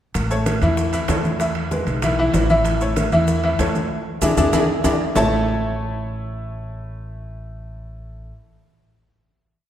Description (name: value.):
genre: latin, salsa.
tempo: 192 BPM.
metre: 4/4.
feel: straight.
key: A major.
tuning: A4 = 440 Hz.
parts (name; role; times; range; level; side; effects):
upright bass; bass; 0.1-8.3 s; A1 to E2; -24 LUFS; equal; none.
bongos; percussion; 0.1-5.2 s; none; -30 LUFS; left 2 dB; none.
maracas; percussion; 0.1-5.2 s; none; -35 LUFS; right 7 dB; none.
timbales; percussion; 0.1-5.2 s; none; -28 LUFS; right 4 dB; none.
congas; percussion; 0.2-5.2 s; none; -28 LUFS; right 1 dB; none.
bright grand piano; accompaniment; 0.3-8.3 s; E3 to A5; -20 LUFS; left 1 dB; none.
room: wet scoring stage reverb, RT60 2.0 s.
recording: recorded in a church or concert hall.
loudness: -17 LUFS.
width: side -11 dB against mid.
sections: 0.1-5.2 montuno (vamp); 5.2-7.7 final chord.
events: band accent 3.9-5.2; drum fill 4.7-5.2.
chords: 0.1 A; 1.4 E; 2.6 A; 3.9 E7; 5.2 A.